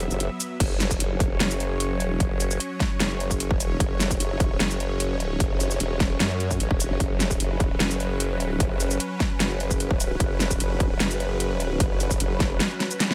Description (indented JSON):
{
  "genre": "heavy wobble dubstep",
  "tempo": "150 BPM",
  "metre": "4/4",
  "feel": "half-time",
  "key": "unclear",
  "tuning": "A4 = 439 Hz",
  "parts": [
    { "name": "supersaw pad", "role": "sustained chords", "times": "0.0-13.1 s", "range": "F#3 to E5", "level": "-34 LUFS", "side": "equal", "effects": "phaser, sidechain pumping" },
    { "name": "formant-sweep wobble bass", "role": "bass", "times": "0.0-12.6 s", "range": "E1 to F#2", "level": "-29 LUFS", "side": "equal", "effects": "chorus, overdrive" },
    { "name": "dubstep drum kit", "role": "drums", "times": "0.0-13.1 s", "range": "crash cymbal, hi-hat, shaker, snare drum", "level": "-29 LUFS", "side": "equal", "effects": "none" },
    { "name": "electronic kick drum", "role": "drums", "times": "0.6-12.5 s", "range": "none", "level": "-28 LUFS", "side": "equal", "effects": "overdrive" }
  ],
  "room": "digital ambience",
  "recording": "none",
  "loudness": "-25 LUFS",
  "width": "mono",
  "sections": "0.6-13.1 A section",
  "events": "break 0.0-0.6; drop 0.6-13.1; drum fill 12.8-13.1",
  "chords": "0.0 F#5"
}